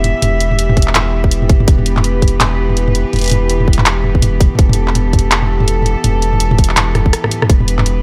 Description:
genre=half-time drum and bass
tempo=165 BPM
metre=4/4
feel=swing 60% on 16ths, half-time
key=E minor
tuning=A4 = 442 Hz
part: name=rich studio cello section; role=sustained chords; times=0.0-8.0 s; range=E3 to E5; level=-22 LUFS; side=equal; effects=sidechain pumping
part: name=saturated sub bass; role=bass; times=0.0-8.0 s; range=E1 to F#1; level=-18 LUFS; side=equal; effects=none
part: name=drum and bass drum kit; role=drums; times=0.0-7.9 s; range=handclaps, hi-hat, rim click, toms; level=-18 LUFS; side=equal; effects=none
part: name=electronic kick drum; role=drums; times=0.8-7.6 s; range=none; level=-13 LUFS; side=equal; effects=none
room=light reverb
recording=none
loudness=-13 LUFS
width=mono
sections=0.0-8.0 A section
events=drum fill 7.0-7.5; break 7.1-7.5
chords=0.0 Em

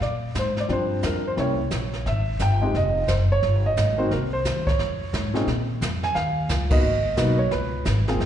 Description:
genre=jazz piano trio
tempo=176 BPM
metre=4/4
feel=swing 64% on 8ths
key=F minor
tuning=A4 = 441 Hz
part: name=warm grand piano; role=melody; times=0.0-8.2 s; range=Bb2 to Ab5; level=-24 LUFS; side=right 1 dB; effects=slapback echo
part: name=upright bass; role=bass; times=0.0-8.3 s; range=F1 to Bb2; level=-24 LUFS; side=equal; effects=none
part: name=jazz brush drum kit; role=drums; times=0.0-8.3 s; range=brushed snare drum, crash cymbal, hi-hat, kick drum, snare drum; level=-28 LUFS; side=equal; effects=slapback echo
room=light reverb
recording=live gig heard through the venue's PA, recital hall reverb, nothing above 10.8 kHz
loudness=-21 LUFS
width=side -10 dB against mid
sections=0.0-5.5 A section; 5.5-8.3 B section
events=band accent 6.7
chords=0.0 Bb69; 1.4 C7b9; 2.7 Fm7; 4.1 Cm; 4.8 Fm; 5.5 Bbmadd11; 6.8 Abm7; 7.5 Db7(no3)

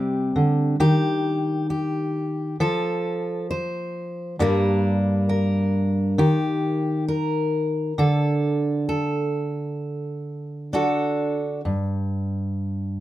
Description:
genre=folk, solo fingerstyle acoustic guitar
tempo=67 BPM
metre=4/4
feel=straight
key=unclear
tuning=A4 = 439 Hz
part: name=fingerpicked steel-string acoustic guitar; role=solo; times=0.0-13.0 s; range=G2 to C5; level=-21 LUFS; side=equal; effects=none
room=light reverb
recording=close, detailed microphones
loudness=-21 LUFS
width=side -14 dB against mid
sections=0.0-11.7 A section; 11.7-13.0 B section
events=none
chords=0.0 C5; 0.8 Eb; 2.6 F; 4.4 Gm; 6.2 Eb; 8.0 D; 11.7 N.C.

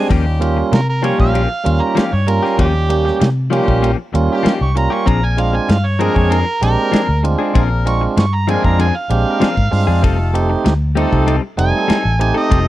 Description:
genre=straight-eighth soul blues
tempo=97 BPM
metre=4/4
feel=straight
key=unclear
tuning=A4 = 440 Hz
part: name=tonewheel organ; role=accompaniment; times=0.0-12.6 s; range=G3 to Ab4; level=-18 LUFS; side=right 4 dB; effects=overdrive
part: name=direct-recorded clean electric guitar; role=stabs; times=0.0-12.7 s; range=F3 to A4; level=-20 LUFS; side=left 7 dB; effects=none
part: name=mellow horn section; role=sustained chords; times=0.1-12.7 s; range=G3 to Bb4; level=-26 LUFS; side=left 3 dB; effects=none
part: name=vintage muted fingered electric bass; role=bass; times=0.1-12.7 s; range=F1 to C3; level=-16 LUFS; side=equal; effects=none
part: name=warm soul drum kit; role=drums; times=0.1-12.7 s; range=hi-hat, kick drum, ride cymbal, snare drum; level=-17 LUFS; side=equal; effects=none
part: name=overdriven harmonica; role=second line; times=0.7-12.7 s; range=G4 to Db6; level=-20 LUFS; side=right 3 dB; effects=none
room=small room ambience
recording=dry, close 1970s-style studio recording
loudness=-13 LUFS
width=side -15 dB against mid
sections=0.0-12.7 A section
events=harmonica solo 0.0-12.7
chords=0.1 Eb9; 5.1 Bb9; 10.0 F9

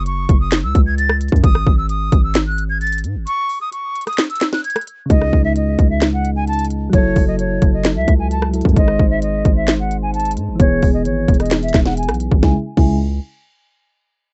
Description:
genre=hip hop, trap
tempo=131 BPM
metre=4/4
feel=half-time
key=C# minor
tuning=A4 = 439 Hz
part: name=jazz flute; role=melody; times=0.0-13.0 s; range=C#5 to A6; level=-24 LUFS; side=equal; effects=low-pass filter, analog delay
part: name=hard-hitting 808-style bass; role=bass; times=0.0-13.2 s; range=E1 to G#2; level=-22 LUFS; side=equal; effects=none
part: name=trap drum kit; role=drums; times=0.1-12.9 s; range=crash cymbal, handclaps, hi-hat, kick drum, rim click, snare drum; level=-17 LUFS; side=equal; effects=none
part: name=soft electric-piano-like synth keys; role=accompaniment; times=5.1-13.0 s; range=C#3 to B#4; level=-23 LUFS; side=equal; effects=chorus, low-pass filter
room=little or no reverb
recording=dark, warm production, nothing above 8.0 kHz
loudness=-16 LUFS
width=mono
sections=0.0-5.1 A section; 5.1-12.4 B section; 12.4-14.3 C section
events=break 3.3-5.1; filter sweep 5.1-12.4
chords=0.0 F#5; 1.4 F#sus2/G# (rootless); 3.3 N.C.; 5.1 C#sus2; 6.9 F#m7; 8.8 G#; 10.6 E; 12.4 C#m

